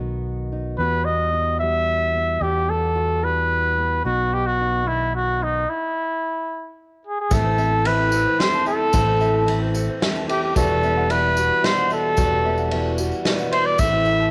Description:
indie folk with a building arrangement; 111 BPM; 3/4; straight; E harmonic minor; A4 = 436 Hz
fingerpicked steel-string acoustic guitar; accompaniment; 0.0-14.3 s; E2 to F#4; -31 LUFS; equal; cassette tape
fingered electric bass; bass; 0.0-14.3 s; E1 to E2; -27 LUFS; equal
warm trumpet; melody; 0.8-14.3 s; D#4 to E5; -23 LUFS; equal
picked twelve-string acoustic guitar; accompaniment; 7.3-14.3 s; E2 to F#4; -31 LUFS; equal; cassette tape
ukulele; arpeggios; 7.3-14.3 s; C4 to A5; -34 LUFS; equal; cassette tape
unplugged drum kit; drums; 7.3-13.9 s; kick drum, ride cymbal, snare drum; -28 LUFS; equal; cassette tape
tambourine; percussion; 7.3-14.1 s; -40 LUFS; equal
light reverb, small room reverb; home recording on cassette; -21 LUFS; mono
0.0-7.3 A section; 7.3-14.3 B section
stop 5.7-7.3
0.0 B; 0.8 Emadd9; 4.0 B; 5.7 N.C.; 7.3 Am; 10.6 Emadd9; 13.8 Am
0.24 | 0.78 1.33 1.87 | 2.42 2.96 3.51 | 4.05 4.59 5.14 | 5.68 6.22 6.77 | 7.31 7.85 8.39 | 8.94 9.48 10.02 | 10.56 11.10 11.64 | 12.18 12.71 13.25 | 13.79

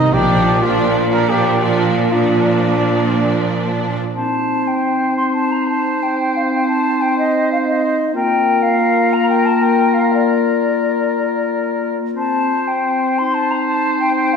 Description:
cinematic; 120 BPM (dotted quarters); 12/8; straight; C dorian; A4 = 439 Hz
clear symphonic violin section; melody; 0.0-4.0 s; D5 to Eb5; -26 LUFS; left 2 dB
clear symphonic violin section; second line; 0.0-4.0 s; D4 to Eb4; -25 LUFS; equal
clear symphonic viola section; accompaniment; 0.0-4.0 s; Eb3 to F3; -22 LUFS; right 1 dB
mellow trumpet; stabs; 0.0-3.7 s; D4 to Bb4; -18 LUFS; right 1 dB
bright symphonic cello section; bass; 0.0-4.0 s; Bb2; -18 LUFS; right 2 dB
dark clarinet; second line; 4.2-14.4 s; Eb4 to F4; -22 LUFS; left 3 dB
mellow hollow silver concert flute; second line; 4.2-14.4 s; D5 to C6; -18 LUFS; left 2 dB
warm oboe; second line; 4.2-14.4 s; Bb4 to C5; -22 LUFS; right 1 dB
mellow French horn section; sustained chords; 4.2-14.4 s; Bb3 to C4; -20 LUFS; left 1 dB
wet recital hall reverb, RT60 1.8 s; heard from further back in the room; -14 LUFS; side -6 dB against mid
0.0-4.2 A section; 4.2-14.4 A section
0.1 Bb; 4.2 Cm; 8.2 Bb; 12.2 Cm
| 0.14 0.63 1.13 1.63 | 2.14 2.65 3.16 3.67 | 4.18 4.69 5.19 5.69 | 6.18 6.68 7.17 7.66 | 8.15 8.64 9.13 9.63 | 10.13 10.64 11.14 11.65 | 12.16 12.67 13.17 13.66 | 14.16

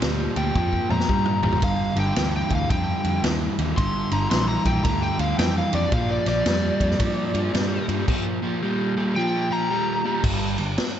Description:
blues rock power trio and southern rock; 112 BPM; 4/4; swing 64% on 8ths; A4 = 440 Hz
crunchy overdriven guitar; riff; 0.0-10.7 s; G2 to G3; -25 LUFS; right 1 dB; spring reverb
vintage muted picked electric bass; bass; 0.0-10.8 s; G1 to G2; -26 LUFS; equal
vintage drum kit; drums; 0.0-10.9 s; crash cymbal, kick drum, ride cymbal, snare drum, toms; -26 LUFS; equal
overdriven slide guitar; melody; 0.4-10.2 s; D5 to C6; -27 LUFS; left 1 dB; slapback echo
moderate lush hall reverb, RT60 1.9 s, small room ambience; big arena sound, nothing above 7.9 kHz; -20 LUFS; side -10 dB against mid
0.0-10.2 A section
electric slide guitar solo 0.0-10.2; drum fill 0.6-1.6
0.0 Bb; 1.6 G5; 5.9 Bb; 10.2 N.C.
0.02 0.56 1.10 | 1.63 2.17 2.71 3.25 | 3.78 4.32 4.86 5.39 | 5.93 6.47 7.01 7.55 | 8.09 8.62 9.16 9.70 | 10.24 10.78

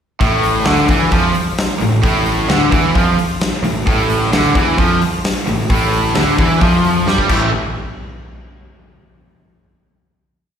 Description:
hard rock; 131 BPM; 4/4; straight; A4 = 440 Hz
cranked stack guitar; riff; 0.2-7.5 s; A2 to A3; -20 LUFS; left 8 dB; overdrive, slapback echo
overdriven semi-hollow guitar; riff; 0.2-7.5 s; A2 to A3; -18 LUFS; right 8 dB; slapback echo
sludgy distorted guitar; riff; 0.2-7.5 s; A2 to A4; -21 LUFS; equal; overdrive, slapback echo
fuzz picked electric bass; bass; 0.2-7.5 s; A1 to G2; -19 LUFS; equal; overdrive
huge arena drum kit; drums; 0.2-7.4 s; crash cymbal, hi-hat, kick drum, snare drum; -18 LUFS; left 1 dB
light reverb, small room ambience; live gig heard through the venue's PA, recital hall reverb; -12 LUFS; side -8 dB against mid
0.2-7.5 riff; 7.5-9.4 final hit
drum fill 7.1-7.5
0.2 A5; 7.3 Am; 7.5 N.C.
| 0.21 0.67 1.12 1.58 | 2.04 2.49 2.95 3.41 | 3.87 4.32 4.78 5.24 | 5.70 6.16 6.62 7.07

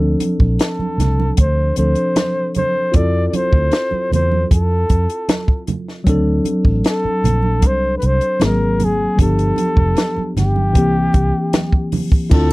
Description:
lush 1970s-style soul; 77 BPM; 4/4; straight; D minor; A4 = 444 Hz
tine electric piano; accompaniment; 0.0-12.5 s; E3 to A4; -20 LUFS; left 1 dB; overdrive
vintage muted fingered electric bass; bass; 0.0-12.5 s; F1 to F2; -17 LUFS; equal
compact cocktail drum kit; drums; 0.2-12.5 s; crash cymbal, hi-hat, kick drum, snare drum; -15 LUFS; equal
congas; percussion; 0.2-12.5 s; -25 LUFS; right 5 dB
breathy flugelhorn; melody; 0.6-12.5 s; G4 to D5; -20 LUFS; equal
triangle; percussion; 12.3-12.5 s; -33 LUFS; right 15 dB
little or no reverb; dry, close 1970s-style studio recording; -14 LUFS; side -20 dB against mid
0.0-12.3 A section
0.0 Dm7; 2.9 Fmaj7; 6.1 D7; 8.4 G#9; 9.2 G7; 10.8 C7
0.60 1.38 2.16 | 2.94 3.73 4.50 5.29 | 6.07 6.85 7.63 8.41 | 9.19 9.97 10.75 11.53 | 12.31

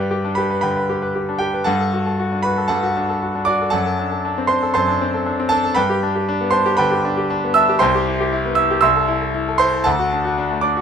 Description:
classical, virtuoso piano study; 117 BPM; 4/4; rubato; G major; A4 = 437 Hz
clear concert grand piano; solo; 0.0-10.8 s; C2 to E6; -16 LUFS; equal
moderate large studio reverb, RT60 1.3 s; close, detailed microphones; -16 LUFS; side -7 dB against mid
0.0-10.8 A section
0.0 G; 1.7 D/G; 3.7 D7/F#; 5.8 G; 7.8 Cmaj7; 8.8 Am/C; 9.9 D
0.11 0.63 1.15 | 1.67 2.19 2.71 3.22 | 3.73 4.24 4.75 5.26 | 5.77 6.28 6.79 7.30 | 7.81 8.32 8.83 9.34 | 9.86 10.38

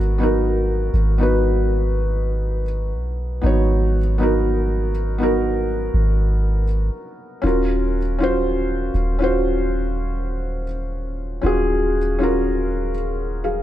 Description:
contemporary R&B; 60 BPM; 4/4; swing 54% on 16ths; G# minor; A4 = 438 Hz
felt-muted upright piano; accompaniment; 0.0-13.6 s; B3 to E#5; -21 LUFS; equal
soft 808-style bass; bass; 0.0-13.6 s; D#1 to B1; -21 LUFS; equal
small room reverb; dark, warm production; -18 LUFS; side -12 dB against mid
0.0-13.6 A section
0.0 G#m7; 7.4 D#m7
0.44 1.44 2.44 | 3.44 4.44 5.44 6.44 | 7.44 8.44 9.44 10.44 | 11.44 12.44 13.44

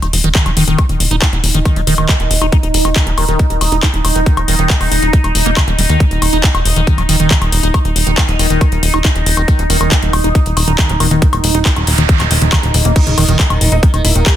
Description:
psychedelic trance; 138 BPM; 4/4; straight; A4 = 440 Hz
overtone-sweeping drone; sustained chords; 0.5-14.4 s; Bb3 to Bb4; -20 LUFS; right 1 dB; chorus, built-in reverb, phaser, sidechain pumping
plucky analog bass; bass; 0.0-14.2 s; Eb1 to Eb2; -14 LUFS; equal
garage drum kit; drums; 0.0-14.3 s; crash cymbal, handclaps, hi-hat, woodblock; -17 LUFS; left 3 dB; studio reverb
liquid acid bass; riff; 0.2-14.3 s; Db3 to Eb4; -20 LUFS; moving between left 5 dB and right 6 dB; phaser, auto-pan, sidechain pumping, digital delay
electronic kick drum; drums; 0.3-14.3 s; -11 LUFS; equal; studio reverb
noise sweep; sound effects; 11.6-13.0 s; -22 LUFS; right 4 dB
sitar; melody; 13.0-14.3 s; Eb3 to G4; -19 LUFS; right 2 dB; phaser, sidechain pumping, tape echo
little or no reverb; dense, heavily limited modern master; -10 LUFS; side -11 dB against mid
0.0-14.4 A section
noise sweep 11.6-13.0
0.0 Eb5
0.35 | 0.79 1.22 1.66 2.09 | 2.52 2.96 3.39 3.83 | 4.26 4.70 5.13 5.57 | 6.00 6.44 6.87 7.31 | 7.74 8.18 8.61 9.05 | 9.48 9.91 10.35 10.79 | 11.22 11.65 12.09 12.52 | 12.96 13.39 13.83 14.26

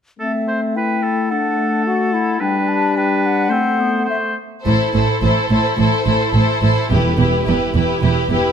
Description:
cinematic; 107 BPM; 4/4; straight; A dorian; A4 = 440 Hz
clear clarinet; second line; 0.2-4.4 s; A3 to F#4; -22 LUFS; left 4 dB
clear oboe; second line; 0.2-4.3 s; A4 to C5; -22 LUFS; right 1 dB
mellow hollow concert flute; second line; 0.2-4.2 s; E5 to A5; -22 LUFS; left 2 dB
dark French horn section; sustained chords; 0.2-4.4 s; G3 to A3; -21 LUFS; left 2 dB
warm symphonic violin section; melody; 4.6-8.5 s; B4 to C5; -22 LUFS; left 3 dB
warm symphonic violin section; second line; 4.7-8.5 s; G4 to A4; -22 LUFS; left 2 dB
rich symphonic viola section; accompaniment; 4.7-8.5 s; E4; -23 LUFS; right 2 dB
warm studio cello section; bass; 4.7-8.4 s; E2 to A2; -19 LUFS; right 2 dB
warm studio double bass section; bass; 4.7-8.4 s; E1 to A1; -19 LUFS; right 4 dB
timpani; percussion; 6.9-7.7 s; E2; -23 LUFS; equal
light reverb; close, detailed microphones; -15 LUFS; side -8 dB against mid
0.2-4.7 A section; 4.7-8.5 B section
build-up 4.7-8.5
0.2 Am; 2.4 G; 3.5 Am; 6.9 Em
| 0.19 0.75 1.31 1.86 | 2.41 2.96 3.51 4.08 | 4.65 5.22 5.78 6.34 | 6.91 7.46 8.02

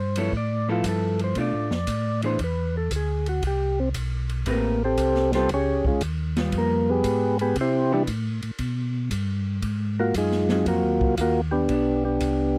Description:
soul jazz organ trio; 116 BPM; 4/4; swing 68% on 8ths; A4 = 442 Hz
percussive tonewheel organ; melody; 0.0-12.6 s; G3 to D5; -26 LUFS; equal; slow rotary speaker
mellow tonewheel organ; bass; 0.0-12.6 s; A1 to C3; -29 LUFS; equal; chorus vibrato, slow rotary speaker
vintage hollow-body jazz guitar; accompaniment; 0.2-12.5 s; E3 to B4; -31 LUFS; equal
open jazz drum kit; drums; 0.2-12.4 s; hi-hat, kick drum, ride cymbal, snare drum; -36 LUFS; equal
little or no reverb; dry, close 1970s-style studio recording; -24 LUFS; mono
0.0-11.7 A section
tonewheel organ solo 0.0-11.7
0.0 Fmaj9#11; 1.4 Bm7b5; 2.4 D69; 3.4 Am9; 5.5 C#7#11; 7.6 Cmaj7; 9.6 Ab13; 11.7 G
0.33 0.84 | 1.36 1.88 2.40 2.91 | 3.43 3.95 4.46 4.98 | 5.50 6.02 6.53 7.05 | 7.57 8.08 8.60 9.12 | 9.63 10.15 10.66 11.18 | 11.70 12.21

